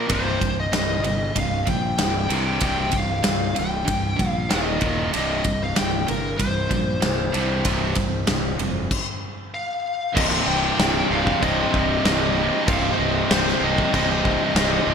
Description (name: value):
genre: hard rock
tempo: 95 BPM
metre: 4/4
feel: straight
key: C minor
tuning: A4 = 440 Hz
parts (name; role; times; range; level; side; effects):
- bluesy overdriven lead guitar; melody; 0.0-14.9 s; Bb4 to G5; -26 LUFS; left 2 dB; distortion
- distorted electric guitar; riff; 0.0-14.9 s; C2 to Eb3; -29 LUFS; left 10 dB; distortion, slapback echo
- tight distorted guitar; riff; 0.0-14.9 s; C2 to Eb3; -26 LUFS; right 8 dB; distortion
- fuzz fingered electric bass; bass; 0.1-14.9 s; C1 to C2; -27 LUFS; equal; overdrive
- big rock drum kit; drums; 0.1-14.7 s; crash cymbal, kick drum, ride cymbal, snare drum; -24 LUFS; equal; none
- tight distorted guitar; riff; 10.1-14.9 s; C2 to C3; -28 LUFS; equal; distortion
- overdriven tonewheel organ; sustained chords; 10.2-14.9 s; C4 to Eb5; -34 LUFS; equal; none
room: light reverb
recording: none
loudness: -19 LUFS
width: side -7 dB against mid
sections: 0.0-10.2 A section; 10.2-14.9 B section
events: stop 8.9-10.2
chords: 0.1 C5; 4.5 Eb5; 5.1 C5; 9.5 N.C.; 10.2 Cm